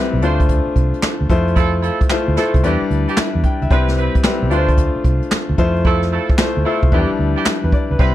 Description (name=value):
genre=R&B, new jack swing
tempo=112 BPM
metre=4/4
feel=swing 66% on 16ths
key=unclear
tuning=A4 = 436 Hz
part: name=clear concert grand piano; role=accompaniment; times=0.0-8.1 s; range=F3 to G5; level=-19 LUFS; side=left 4 dB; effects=none
part: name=vintage muted fingered electric bass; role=bass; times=0.1-8.1 s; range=B1 to F2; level=-18 LUFS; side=equal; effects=none
part: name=warm horn section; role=stabs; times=0.2-8.1 s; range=C4 to C5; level=-23 LUFS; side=right 7 dB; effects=slapback echo
part: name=jazz brush drum kit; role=drums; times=0.2-8.1 s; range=handclaps, hi-hat, kick drum, snare drum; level=-17 LUFS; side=equal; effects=none
room=small room ambience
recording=none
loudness=-14 LUFS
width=side -13 dB against mid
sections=0.0-8.1 A section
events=hi-hats muted 5.8-8.0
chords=0.2 Dm7; 1.3 Fmaj7; 2.6 Em7; 3.7 Cmaj7; 4.5 Dm7; 5.6 Fmaj7; 6.9 Em7